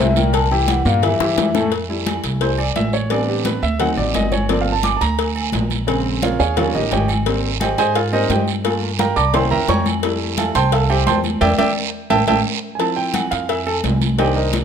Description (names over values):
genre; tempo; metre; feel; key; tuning
Afro-Cuban jazz; 173 BPM; 4/4; straight; F major; A4 = 442 Hz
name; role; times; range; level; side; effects
vibraphone with soft mallets; melody; 0.0-1.6 s; E5 to A5; -20 LUFS; left 5 dB; none
warm upright piano; accompaniment; 0.0-14.6 s; A2 to D6; -19 LUFS; right 2 dB; none
upright bass; bass; 0.0-14.6 s; G1 to Ab2; -21 LUFS; right 1 dB; none
agogo bells and timbales; percussion; 0.2-14.6 s; none; -28 LUFS; right 5 dB; none
congas; percussion; 0.2-14.6 s; none; -25 LUFS; left 4 dB; none
guiro; percussion; 0.2-14.6 s; none; -29 LUFS; right 12 dB; none
cowbell and bongos; percussion; 0.3-14.6 s; none; -25 LUFS; left 10 dB; none
room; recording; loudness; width
moderate large studio reverb, RT60 1.3 s; close, detailed microphones; -16 LUFS; side -7 dB against mid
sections
0.0-1.7 A section; 1.7-12.8 A section; 12.8-14.6 A section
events
vibraphone solo 0.0-1.7; drum fill 1.2-1.7, 12.1-12.8; upright piano solo 1.7-14.6; band accent 11.4-12.8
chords
0.3 C7; 1.7 Fmaj9; 3.1 Am11; 3.8 D7b9; 4.5 Gm11; 5.9 Bbm7; 6.6 Eb9; 7.3 Abmaj9; 8.6 Gm9; 9.3 C7b9; 10.0 Fmaj9; 11.4 Em7; 12.1 A5; 12.8 Cadd11